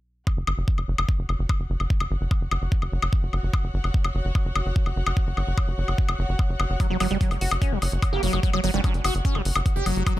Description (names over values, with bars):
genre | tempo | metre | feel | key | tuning
psychedelic trance | 147 BPM | 4/4 | straight | unclear | A4 = 441 Hz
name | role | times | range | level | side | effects
electronic kick drum | drums | 0.3-10.1 s | none | -23 LUFS | equal | overdrive
electronic woodblock and hi-hat | drums | 0.3-10.1 s | none | -30 LUFS | left 3 dB | overdrive
clear studio string section | texture | 0.3-10.2 s | F#4 to F#5 | -37 LUFS | left 1 dB | sidechain pumping
tight sequencer bass | bass | 0.4-10.2 s | F#1 to G1 | -26 LUFS | equal | none
liquid acid bass | riff | 6.8-10.2 s | F#3 to G4 | -27 LUFS | moving between left 5 dB and right 4 dB | phaser, auto-pan, sidechain pumping, dub echo
metallic wobble bass | second line | 8.1-8.9 s | A#3 to C#4 | -39 LUFS | right 2 dB | distortion, chorus, sidechain pumping, high-pass filter, dub echo
riser | sound effects | 10.1-10.2 s | none | barely audible | none | none
room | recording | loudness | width
little or no reverb | faint mains hum | -22 LUFS | side -15 dB against mid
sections
0.3-10.2 A section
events
fade-in on string section 0.3-10.2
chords
0.3 F#5